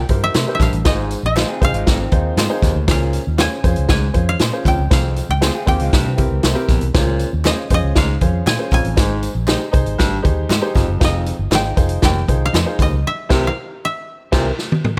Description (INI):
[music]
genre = uptempo 1960s-style soul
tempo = 118 BPM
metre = 4/4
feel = straight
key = F minor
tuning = A4 = 437 Hz
[part]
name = koto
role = melody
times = 0.0-15.0 s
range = Eb5 to Ab5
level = -25 LUFS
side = equal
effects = none
[part]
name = warm baritone saxophone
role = riff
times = 0.0-14.5 s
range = Eb2 to C3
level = -28 LUFS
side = equal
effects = none
[part]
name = vintage muted fingered electric bass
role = bass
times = 0.0-14.5 s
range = F1 to C3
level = -22 LUFS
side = equal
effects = none
[part]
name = bright upright piano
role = accompaniment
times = 0.1-14.5 s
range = C4 to C5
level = -27 LUFS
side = equal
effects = none
[part]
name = vintage drum kit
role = drums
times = 0.1-15.0 s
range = crash cymbal, hi-hat, kick drum, snare drum, toms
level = -20 LUFS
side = equal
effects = none
[part]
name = electric guitar through a small old amp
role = stabs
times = 0.3-14.5 s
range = Db4 to C5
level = -32 LUFS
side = equal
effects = none
[part]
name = handclaps and tambourine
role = percussion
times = 0.4-12.9 s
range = none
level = -36 LUFS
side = equal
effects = none
[part]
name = electric guitar through a small old amp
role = riff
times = 1.5-6.8, 13.3-14.5 s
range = Eb3 to Ab4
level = -31 LUFS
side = equal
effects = none
[part]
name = congas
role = percussion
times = 7.0-13.0 s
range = none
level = barely audible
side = none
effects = none
[sound]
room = light reverb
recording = none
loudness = -17 LUFS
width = mono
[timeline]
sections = 0.0-15.0 A section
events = band accent 13.1-15.0; drum fill 14.6-15.0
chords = 0.0 C7; 0.9 Ab6; 2.9 Dbmaj7; 4.9 Fm/C; 5.9 C7; 6.9 Dbmaj7; 9.0 Abmaj7; 11.0 Fm7; 13.1 C7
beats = 0.34 | 0.85 1.36 1.87 2.37 | 2.88 3.39 3.90 4.40 | 4.91 5.42 5.93 6.43 | 6.94 7.45 7.96 8.47 | 8.98 9.48 9.99 10.50 | 11.01 11.52 12.03 12.54 | 13.05 13.56 14.07 14.58